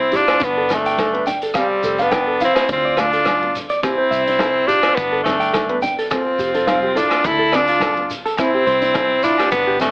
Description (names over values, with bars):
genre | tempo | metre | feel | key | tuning
highlife guitar band | 106 BPM | 4/4 | straight | C major | A4 = 440 Hz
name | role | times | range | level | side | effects
bright tenor saxophone | melody | 0.0-9.9 s | G3 to E4 | -17 LUFS | equal | none
bright trumpet | second line | 0.0-9.9 s | C4 to A4 | -25 LUFS | left 1 dB | none
fingered electric bass | bass | 0.0-9.9 s | F1 to D2 | -36 LUFS | equal | none
picked plugged-in steel-string acoustic guitar | accompaniment | 0.1-9.9 s | A3 to E4 | -29 LUFS | left 1 dB | none
electric guitar through a small old amp | arpeggios | 0.1-9.8 s | E4 to G5 | -22 LUFS | right 1 dB | tape echo
vintage drum kit | drums | 0.1-9.9 s | hi-hat, kick drum, rim click | -26 LUFS | equal | none
congas | percussion | 0.1-9.9 s | none | -29 LUFS | left 1 dB | none
shekere | percussion | 0.1-9.9 s | none | -35 LUFS | right 1 dB | none
agogo bells | percussion | 0.3-9.9 s | none | -28 LUFS | left 1 dB | none
room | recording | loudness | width
light reverb, studio ambience | AM radio sound | -15 LUFS | side -26 dB against mid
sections
0.0-9.9 A section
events
none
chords
0.4 Gadd9; 1.6 Fadd9; 2.7 Dm; 3.8 C; 5.0 Gadd9; 6.1 Fadd9; 7.2 Dm; 8.4 C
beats
0.42 0.99 | 1.56 2.13 2.70 3.27 | 3.84 4.41 4.97 5.54 | 6.11 6.68 7.25 7.82 | 8.38 8.95 9.52